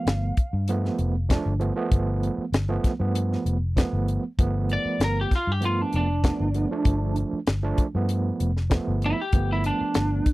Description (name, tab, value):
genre	straight-eighth soul blues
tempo	97 BPM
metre	4/4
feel	straight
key	G mixolydian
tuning	A4 = 437 Hz
part	lightly driven lead guitar	melody	0.0-10.3 s	D4 to F5	-27 LUFS	right 1 dB	none
part	overdriven tine electric piano	accompaniment	0.0-10.2 s	F3 to D4	-28 LUFS	right 3 dB	medium tremolo
part	vintage muted fingered electric bass	bass	0.1-10.2 s	F1 to G2	-25 LUFS	equal	none
part	tight funk drum kit	drums	0.1-10.3 s	hi-hat, kick drum, snare drum	-22 LUFS	left 1 dB	none
room	little or no reverb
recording	dry, close 1970s-style studio recording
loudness	-22 LUFS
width	side -19 dB against mid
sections	0.0-4.4 A section; 4.4-10.3 B section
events	lead electric guitar solo 4.4-10.3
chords	0.0 G9